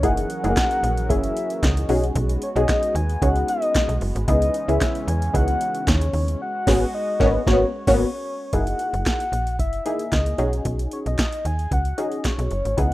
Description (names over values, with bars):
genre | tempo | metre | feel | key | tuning
early-eighties boogie funk | 113 BPM | 4/4 | straight | B major | A4 = 439 Hz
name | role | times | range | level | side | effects
soft octave-layered synth lead | melody | 0.0-12.9 s | C#5 to G#5 | -26 LUFS | left 1 dB | chorus
funky polysynth comp | accompaniment | 0.0-12.9 s | A3 to C#5 | -24 LUFS | left 1 dB | chorus
brassy analog pad | sustained chords | 0.0-8.5 s | C#3 to A#4 | -32 LUFS | right 1 dB | chorus
slap-like FM bass | bass | 0.0-12.9 s | F#1 to E2 | -23 LUFS | equal | none
electro analog drum machine | drums | 0.0-12.9 s | crash cymbal, handclaps, hi-hat, kick drum, snare drum | -24 LUFS | equal | none
room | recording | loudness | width
little or no reverb | rough home demo mix | -19 LUFS | side -16 dB against mid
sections
0.0-8.5 A section; 8.5-12.9 B section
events
band accent 6.4-8.5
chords
0.0 F#13; 1.9 B6; 4.3 C#m9; 6.4 G#m11; 8.5 F#13; 10.4 B6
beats
| 0.03 0.56 1.10 1.63 | 2.16 2.69 3.22 3.75 | 4.28 4.81 5.34 5.87 | 6.41 6.94 7.47 8.00 | 8.53 9.06 9.59 10.12 | 10.65 11.18 11.71 12.25 | 12.78